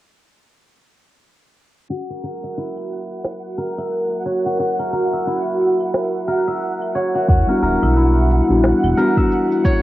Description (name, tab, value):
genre	organic downtempo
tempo	89 BPM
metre	4/4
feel	swing 59% on 16ths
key	F# phrygian dominant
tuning	A4 = 440 Hz
part	warm analog pad	sustained chords	1.9-9.8 s	E4 to F#5	-21 LUFS	equal	chorus, sidechain pumping, cassette tape, plate reverb
part	steel-string zither	arpeggios	1.9-9.8 s	E4 to E5	-24 LUFS	left 1 dB	low-pass filter, cassette tape, tape echo, plate reverb
part	electronic shaker, claves and snare drum	drums	1.9-9.8 s	none	-24 LUFS	equal	none
part	twinkling granular texture	texture	2.3-9.8 s	F#5	-31 LUFS	right 3 dB	built-in reverb, cassette tape, plate reverb
part	smooth gliding synth bass	bass	7.3-8.9 s	D1 to B1	-17 LUFS	equal	sidechain pumping
part	electronic kick drum	drums	7.3-9.8 s	none	-16 LUFS	equal	none
part	muted felt-like synth keys	accompaniment	7.5-9.8 s	G3 to F#4	-18 LUFS	left 1 dB	chorus, sidechain pumping, cassette tape, tape echo, plate reverb
room	wet studio reverb, RT60 0.5 s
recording	home recording on cassette, low-pass filter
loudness	-16 LUFS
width	side -15 dB against mid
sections	1.9-9.8 A section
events	filter sweep on guzheng 1.9-9.8; filter sweep on analog synth pad 1.9-9.8; filter sweep 1.9-9.8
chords	1.9 F#7; 7.3 Em7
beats	| 1.90 2.57 3.24 3.92 | 4.59 5.27 5.94 6.62 | 7.29 7.96 8.64 9.31